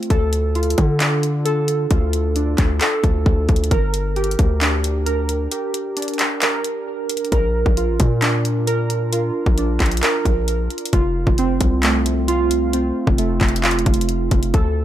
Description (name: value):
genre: hip hop, trap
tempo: 133 BPM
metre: 4/4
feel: half-time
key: Bb major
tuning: A4 = 439 Hz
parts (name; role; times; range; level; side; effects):
- warbly lo-fi synth keys; arpeggios; 0.0-14.8 s; A3 to Bb4; -21 LUFS; right 2 dB; chorus, tape echo
- trap drum kit; drums; 0.0-14.6 s; handclaps, hi-hat, kick drum; -19 LUFS; equal; none
- hard-hitting 808-style bass; bass; 0.1-14.8 s; F1 to D3; -20 LUFS; equal; none
room: little or no reverb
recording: none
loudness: -16 LUFS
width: side -12 dB against mid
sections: 0.0-7.3 A section; 7.3-14.8 B section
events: break 5.5-7.3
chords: 0.1 Dm; 3.7 Gm; 7.3 Bb; 10.9 F